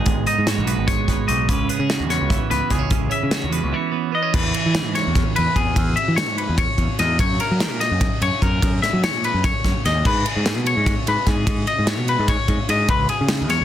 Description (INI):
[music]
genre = math rock and midwest emo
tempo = 295 BPM (eighths)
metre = 7/8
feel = straight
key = E lydian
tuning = A4 = 440 Hz
[part]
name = twelve-string electric guitar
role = accompaniment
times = 0.0-5.8 s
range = G#2 to F#4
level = -24 LUFS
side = right 14 dB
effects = spring reverb
[part]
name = twangy electric guitar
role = arpeggios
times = 0.0-13.6 s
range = G#4 to E5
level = -23 LUFS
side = left 4 dB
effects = none
[part]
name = growling picked electric bass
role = bass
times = 0.0-13.6 s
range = G#1 to F#3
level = -23 LUFS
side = equal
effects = overdrive
[part]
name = modern studio drum kit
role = drums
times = 0.1-13.6 s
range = crash cymbal, hi-hat, kick drum, ride cymbal, snare drum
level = -21 LUFS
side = equal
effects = none
[sound]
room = little or no reverb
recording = dense, heavily limited modern master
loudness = -17 LUFS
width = side -11 dB against mid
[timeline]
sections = 0.0-4.3 A section; 4.3-13.6 B section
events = none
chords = 0.0 G#m7; 1.5 C#m7; 4.3 E; 7.2 F#; 10.0 G#m; 12.9 C#m7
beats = | 0.07 0.27 0.48 0.68 0.88 1.09 1.29 | 1.49 1.70 1.90 2.10 2.31 2.51 2.71 | 2.92 3.12 3.33 3.53 3.73 3.94 4.14 | 4.34 4.55 4.75 4.96 5.16 5.36 5.57 | 5.77 5.97 6.18 6.38 6.58 6.79 6.99 | 7.20 7.40 7.60 7.81 8.01 8.21 8.42 | 8.62 8.82 9.03 9.23 9.44 9.64 9.84 | 10.05 10.25 10.45 10.66 10.86 11.06 11.27 | 11.47 11.68 11.88 12.08 12.29 12.49 12.69 | 12.90 13.10 13.30 13.51